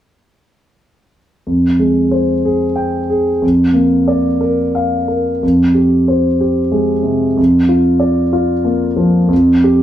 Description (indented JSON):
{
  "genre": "classical",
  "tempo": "62 BPM (dotted quarters)",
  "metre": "6/8",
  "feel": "rubato",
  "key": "F dorian",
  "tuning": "A4 = 441 Hz",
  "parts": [
    { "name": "warm concert grand piano", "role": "accompaniment", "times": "1.5-9.8 s", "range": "F2 to G5", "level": "-11 LUFS", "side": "equal", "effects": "none" }
  ],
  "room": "moderate studio reverb, RT60 0.6 s",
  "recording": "band playing live in one room",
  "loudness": "-11 LUFS",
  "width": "side -11 dB against mid",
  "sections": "1.5-5.4 A section; 5.4-9.8 B section",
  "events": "none",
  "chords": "1.5 Fmadd9; 3.4 Bb/F; 5.4 Fmadd9; 7.4 Bb/F; 9.3 Fsus2",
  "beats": "| 1.47 2.46 | 3.43 4.41 | 5.42 6.41 | 7.38 8.34 | 9.31"
}